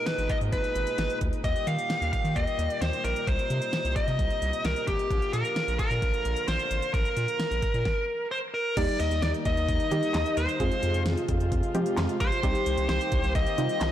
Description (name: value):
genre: synth-pop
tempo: 131 BPM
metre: 4/4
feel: straight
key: Eb major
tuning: A4 = 443 Hz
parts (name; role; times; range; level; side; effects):
- dark smooth lead guitar; melody; 0.0-13.9 s; G4 to F5; -28 LUFS; equal; overdrive, shimmer reverb
- warm brass ensemble; sustained chords; 0.0-13.9 s; Bb2 to G4; -35 LUFS; left 1 dB; stereo widening, shimmer reverb
- pop drum kit; drums; 0.1-13.9 s; crash cymbal, handclaps, hi-hat, kick drum, snare drum; -30 LUFS; equal; none
- round analog bass; bass; 0.2-13.9 s; Ab1 to F3; -30 LUFS; equal; transformer saturation
- funky polysynth comp; accompaniment; 8.8-13.9 s; G3 to Ab4; -32 LUFS; right 2 dB; chorus, shimmer reverb
room: light reverb, digital ambience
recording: blown-out, overdriven recording, overdrive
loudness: -24 LUFS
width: side -11 dB against mid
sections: 0.0-8.8 A section; 8.8-13.9 B section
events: none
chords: 0.0 Abmadd9; 1.4 Eb; 3.3 Cm7; 5.1 Bb; 8.8 Eb; 10.6 Fm; 12.4 Cm7